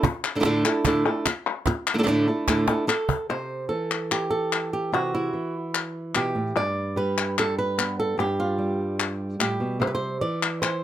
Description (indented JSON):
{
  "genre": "flamenco",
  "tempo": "147 BPM",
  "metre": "4/4",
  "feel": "straight",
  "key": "unclear",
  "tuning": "A4 = 441 Hz",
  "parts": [
    { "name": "flamenco guitar", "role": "melody", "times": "0.0-10.8 s", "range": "G2 to D5", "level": "-24 LUFS", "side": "right 1 dB", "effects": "none" },
    { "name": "cajon", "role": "percussion", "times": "0.0-3.2 s", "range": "none", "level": "-26 LUFS", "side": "right 4 dB", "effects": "none" },
    { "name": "palmas hand claps", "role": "percussion", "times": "0.0-10.8 s", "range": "none", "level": "-26 LUFS", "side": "left 7 dB", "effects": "none" }
  ],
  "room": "light reverb",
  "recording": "close, detailed microphones",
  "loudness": "-22 LUFS",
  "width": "side -11 dB against mid",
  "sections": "0.0-3.3 A section; 3.3-10.8 B section",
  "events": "drum fill 2.7-3.3",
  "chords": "0.0 Asus4; 3.3 C; 6.6 G7; 9.8 C",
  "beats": "| 0.04 0.45 0.85 1.26 | 1.67 2.08 2.49 2.89 | 3.30 3.71 4.12 4.53 | 4.93 5.34 5.75 6.15 | 6.56 6.97 7.38 7.78 | 8.19 8.60 9.00 9.41 | 9.81 10.22 10.63"
}